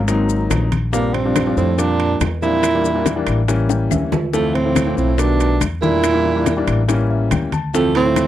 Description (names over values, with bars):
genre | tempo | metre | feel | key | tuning
Afro-Cuban jazz | 141 BPM | 4/4 | straight | D minor | A4 = 440 Hz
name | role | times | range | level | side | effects
upright bass | bass | 0.0-8.3 s | G#1 to F2 | -20 LUFS | equal | none
warm concert grand piano | accompaniment | 0.1-8.2 s | D#3 to A5 | -22 LUFS | left 4 dB | none
bongos | percussion | 0.1-8.3 s | none | -24 LUFS | left 9 dB | none
congas | percussion | 0.1-8.3 s | none | -25 LUFS | left 3 dB | none
maracas | percussion | 0.1-8.3 s | none | -32 LUFS | left 28 dB | none
timbales | percussion | 0.1-8.3 s | none | -28 LUFS | right 7 dB | none
claves | percussion | 0.5-8.3 s | none | -31 LUFS | left 23 dB | none
breathy tenor saxophone | melody | 0.9-8.3 s | A3 to E4 | -19 LUFS | right 2 dB | none
warm baritone saxophone | second line | 0.9-8.3 s | F2 to B2 | -22 LUFS | right 8 dB | none
room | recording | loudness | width
little or no reverb | dry, close 1970s-style studio recording | -15 LUFS | side -12 dB against mid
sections
0.0-8.3 A section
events
grand piano fill 3.5-4.3, 6.9-7.7; drum fill 3.7-4.3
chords
0.1 G#9; 0.9 Bb6; 2.6 Em7b5; 3.5 A7b9; 4.3 Dm7; 5.2 B7alt; 6.0 Em7b5; 6.9 A7b9; 7.7 Dm9